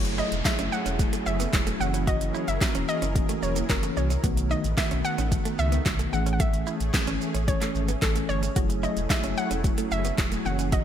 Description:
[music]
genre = dance-pop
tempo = 111 BPM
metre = 4/4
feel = straight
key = F# dorian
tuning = A4 = 439 Hz
[part]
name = hollow square pluck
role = melody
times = 0.0-10.8 s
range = A4 to F#5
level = -32 LUFS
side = equal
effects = chorus, ping-pong delay
[part]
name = mellow tine electric piano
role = accompaniment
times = 0.0-10.8 s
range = D#3 to G#4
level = -31 LUFS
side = left 1 dB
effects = medium stereo tremolo, sidechain pumping
[part]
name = supersaw pad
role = sustained chords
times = 0.0-10.8 s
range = D#3 to A#4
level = -35 LUFS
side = right 1 dB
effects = ensemble chorus, sidechain pumping
[part]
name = direct-recorded clean electric guitar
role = riff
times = 0.0-10.8 s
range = A3 to F#4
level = -36 LUFS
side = right 6 dB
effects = lush chorus
[part]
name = sub bass with octave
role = bass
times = 0.0-10.8 s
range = E1 to C#2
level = -29 LUFS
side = equal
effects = sidechain pumping
[part]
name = downlifter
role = sound effects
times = 0.0-4.2 s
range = none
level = -37 LUFS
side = equal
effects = none
[part]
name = deep house drum kit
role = drums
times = 0.1-10.8 s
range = handclaps, hi-hat, kick drum, shaker, snare drum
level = -27 LUFS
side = equal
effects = gated reverb
[sound]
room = light reverb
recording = bright 1980s-style digital production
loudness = -23 LUFS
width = side -9 dB against mid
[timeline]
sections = 0.0-10.8 A section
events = none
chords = 0.0 F#m9; 1.8 F#7; 4.2 B7; 6.1 Amaj7; 8.6 F#m9

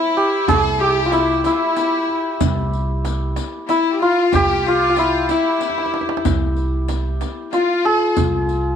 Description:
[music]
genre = Persian modal ensemble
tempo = 62 BPM (dotted quarters)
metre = 6/8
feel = straight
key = unclear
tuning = A4 = 441 Hz
[part]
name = santur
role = melody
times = 0.0-8.8 s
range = E4 to C5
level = -18 LUFS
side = equal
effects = slapback echo
[part]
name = clear violin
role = second line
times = 0.0-8.2 s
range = E4 to Ab4+49c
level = -26 LUFS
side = left 12 dB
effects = none
[part]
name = rich chamber violin section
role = second line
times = 0.0-8.2 s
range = E4 to Ab4+45c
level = -25 LUFS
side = left 1 dB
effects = none
[part]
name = tombak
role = percussion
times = 0.2-8.6 s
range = none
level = -24 LUFS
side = right 6 dB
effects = none
[part]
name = upright bass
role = bass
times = 0.5-8.8 s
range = C2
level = -22 LUFS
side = right 1 dB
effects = none
[part]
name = riq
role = percussion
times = 0.5-8.6 s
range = none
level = -29 LUFS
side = left 15 dB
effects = none
[sound]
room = light reverb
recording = 1960s-style stereo with parts hard left and right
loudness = -16 LUFS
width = side -8 dB against mid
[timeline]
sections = 0.0-8.8 A section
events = drum fill 5.6-6.2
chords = none

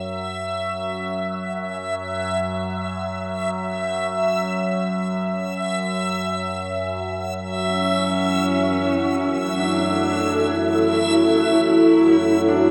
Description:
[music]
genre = dark ambient drone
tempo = free time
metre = none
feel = none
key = F# minor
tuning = A4 = 443 Hz
[part]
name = overtone-sweeping drone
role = drone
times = 0.0-12.7 s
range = F#2 to F#3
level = -28 LUFS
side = equal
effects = chorus, built-in reverb, phaser
[part]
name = backwards swelling texture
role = texture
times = 0.0-12.7 s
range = E5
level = -27 LUFS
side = equal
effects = built-in reverb
[part]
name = dark horsehead fiddle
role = melody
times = 7.7-12.7 s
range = C#4 to E4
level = -23 LUFS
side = equal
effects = analog delay
[part]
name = dark analog pad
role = sustained chords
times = 8.5-12.7 s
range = E4 to C#5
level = -22 LUFS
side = equal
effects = chorus
[sound]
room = wet huge ambient reverb, RT60 8.6 s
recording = dreamy mix soaked in reverb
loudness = -21 LUFS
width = mono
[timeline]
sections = 0.0-12.7 A section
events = fade-in on synth drone 0.0-12.7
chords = 0.0 F#m

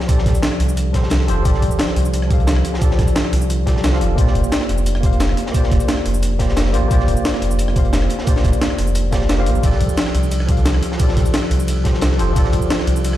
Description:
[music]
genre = liquid drum and bass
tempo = 176 BPM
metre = 4/4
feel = straight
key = F major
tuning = A4 = 440 Hz
[part]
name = tine electric piano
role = accompaniment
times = 0.0-13.2 s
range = F3 to F5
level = -22 LUFS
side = equal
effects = overdrive, fast stereo tremolo, vintage 12-bit sampler grit, dub echo
[part]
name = crunchy breakbeat drum kit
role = drums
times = 0.0-13.1 s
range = hi-hat, snare drum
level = -30 LUFS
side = equal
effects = high-pass filter on hats, high-pass filter on snare, high-pass filter on room
[part]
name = breakbeat sampler-style drum kit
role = drums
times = 0.1-13.2 s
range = hi-hat, ride cymbal, rim click, shaker, snare drum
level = -24 LUFS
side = equal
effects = none
[part]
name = electronic kick drum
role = drums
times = 0.1-12.6 s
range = none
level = -17 LUFS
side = equal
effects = none
[part]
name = sub bass with octave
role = bass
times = 0.3-13.2 s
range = F1 to C2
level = -18 LUFS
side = equal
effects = none
[sound]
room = light reverb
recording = played on a big sound system in a bare room, large studio reverb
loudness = -14 LUFS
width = side -13 dB against mid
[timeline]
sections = 0.0-13.2 A section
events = kick drops out 9.3-9.6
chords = 0.0 F69; 4.2 Bb69; 9.6 F69

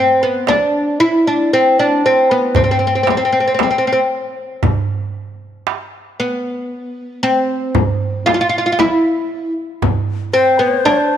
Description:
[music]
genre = Arabic maqam ensemble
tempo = 116 BPM (eighths)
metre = 10/8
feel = straight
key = unclear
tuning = A4 = 440 Hz
[part]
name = oud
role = melody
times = 0.0-11.2 s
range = B3 to F4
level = -14 LUFS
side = equal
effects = none
[part]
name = darbuka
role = percussion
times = 0.5-11.1 s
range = none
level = -20 LUFS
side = right 5 dB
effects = none
[part]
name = frame drum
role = percussion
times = 0.5-11.1 s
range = none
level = -21 LUFS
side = left 8 dB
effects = none
[part]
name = breathy bright ney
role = second line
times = 10.3-11.2 s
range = C5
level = -19 LUFS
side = left 8 dB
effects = none
[sound]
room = light reverb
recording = 1960s-style stereo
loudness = -13 LUFS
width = side -10 dB against mid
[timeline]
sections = 0.0-11.2 A section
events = none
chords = none

